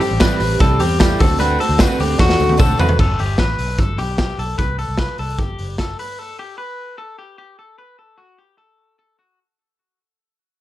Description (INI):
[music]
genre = jangly indie pop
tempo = 150 BPM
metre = 4/4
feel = straight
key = G major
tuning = A4 = 440 Hz
[part]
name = picked twelve-string acoustic guitar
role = accompaniment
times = 0.0-3.0 s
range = A2 to G4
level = -20 LUFS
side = right 5 dB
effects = plate reverb
[part]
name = electric guitar through a small old amp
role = arpeggios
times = 0.0-9.4 s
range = F#4 to B4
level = -22 LUFS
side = left 3 dB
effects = tube saturation, plate reverb
[part]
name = raw garage drum kit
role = drums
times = 0.0-6.1 s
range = crash cymbal, hi-hat, kick drum, snare drum, toms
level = -17 LUFS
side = equal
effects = none
[part]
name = tambourine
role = percussion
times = 0.0-2.9 s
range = none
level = -37 LUFS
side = left 15 dB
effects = none
[part]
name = vintage muted fingered electric bass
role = bass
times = 0.1-5.9 s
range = F#1 to E2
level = -21 LUFS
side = equal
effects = none
[sound]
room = light reverb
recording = dark, warm production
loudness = -14 LUFS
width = side -14 dB against mid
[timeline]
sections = 0.0-3.0 A section; 3.0-9.4 B section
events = drum fill 2.2-3.0; fade-out 3.0-9.4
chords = 0.0 Am7; 1.2 D7; 3.0 G; 4.6 C5; 6.2 Gadd9; 7.6 F#m